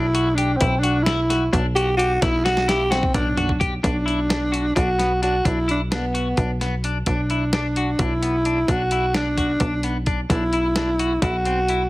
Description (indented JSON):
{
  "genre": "progressive instrumental, band music in an uneven meter",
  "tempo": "260 BPM (eighths)",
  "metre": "7/8",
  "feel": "straight",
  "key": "B phrygian",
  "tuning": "A4 = 440 Hz",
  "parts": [
    { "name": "growling tenor saxophone", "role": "melody", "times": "0.0-11.9 s", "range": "B3 to G4", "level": "-21 LUFS", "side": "equal", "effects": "none" },
    { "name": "clean electric guitar", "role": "arpeggios", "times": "0.0-11.8 s", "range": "B3 to G4", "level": "-27 LUFS", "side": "left 3 dB", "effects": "wide subtle chorus, digital delay" },
    { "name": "plucky analog bass", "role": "bass", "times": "0.0-11.9 s", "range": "B1", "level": "-24 LUFS", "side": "equal", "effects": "none" },
    { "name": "dusty soul sampler-style drum kit", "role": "drums", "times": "0.1-11.8 s", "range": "hi-hat, kick drum, snare drum, toms", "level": "-25 LUFS", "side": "equal", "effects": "overdrive" }
  ],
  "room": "light reverb",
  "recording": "heavily compressed radio sound",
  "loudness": "-18 LUFS",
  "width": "side -19 dB against mid",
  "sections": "0.0-3.8 A section; 3.8-11.9 B section",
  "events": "tenor saxophone solo 0.0-3.8; drum fill 2.2-3.8",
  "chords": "0.0 Bmadd11; 3.8 Bm; 10.3 Cadd9/B (rootless)"
}